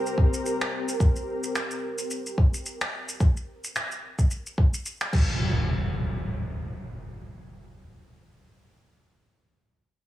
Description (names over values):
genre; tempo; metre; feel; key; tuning
organic downtempo; 109 BPM; 4/4; swing 57% on 16ths; unclear; A4 = 438 Hz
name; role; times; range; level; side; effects
ethereal airy pad; sustained chords; 0.0-1.0 s; C4 to Bb4; -31 LUFS; equal; ensemble chorus, built-in reverb, sidechain pumping
deep house drum kit; drums; 0.1-5.3 s; crash cymbal, finger snaps, shaker; -32 LUFS; equal; small room ambience
electronic kick drum; drums; 0.2-5.3 s; none; -20 LUFS; equal; small room ambience
impact; sound effects; 5.1-8.6 s; none; -28 LUFS; equal; none
room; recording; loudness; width
light reverb, digital ambience; heavily compressed radio sound, small room ambience; -24 LUFS; side -14 dB against mid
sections
0.0-5.4 A section; 5.4-7.6 B section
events
none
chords
0.0 C5; 1.0 N.C.